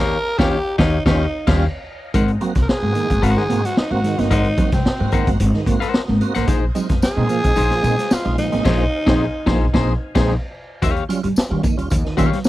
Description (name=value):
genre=funk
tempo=111 BPM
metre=4/4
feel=straight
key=unclear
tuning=A4 = 440 Hz
part: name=growling tenor saxophone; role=melody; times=0.0-10.2 s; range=C4 to Bb4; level=-22 LUFS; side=equal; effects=slapback echo
part: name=electric guitar at the edge of break-up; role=accompaniment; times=0.0-12.4 s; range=Eb4 to Gb5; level=-22 LUFS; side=left 6 dB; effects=none
part: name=phased string machine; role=sustained chords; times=0.0-10.8 s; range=C5 to Bb5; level=-35 LUFS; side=left 1 dB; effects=ensemble chorus, phaser
part: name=upright bass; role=bass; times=0.0-12.5 s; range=G1 to Eb3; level=-20 LUFS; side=equal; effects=none
part: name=tonewheel organ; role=stabs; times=0.4-12.5 s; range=Ab2 to Gb4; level=-24 LUFS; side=right 4 dB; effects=overdrive, chorus vibrato, slow rotary speaker
part: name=raw garage drum kit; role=drums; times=0.4-12.5 s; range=crash cymbal, hi-hat, kick drum, snare drum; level=-20 LUFS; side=equal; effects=none
part: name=mellow electric guitar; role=riff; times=2.3-12.5 s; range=Gb3 to Bb3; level=-25 LUFS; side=right 4 dB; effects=none
part: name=tambourine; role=percussion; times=6.5-12.5 s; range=none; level=-37 LUFS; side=left 4 dB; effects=none
room=little or no reverb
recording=dry, close 1970s-style studio recording, vinyl crackle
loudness=-16 LUFS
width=side -16 dB against mid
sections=0.0-2.1 A section; 2.1-10.8 B section; 10.8-12.5 C section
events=band accent 0.0-2.1, 8.7-10.8; tenor saxophone solo 0.0-2.1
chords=0.0 Eb9; 2.1 Ab9; 6.5 Bb9sus4; 10.8 Eb9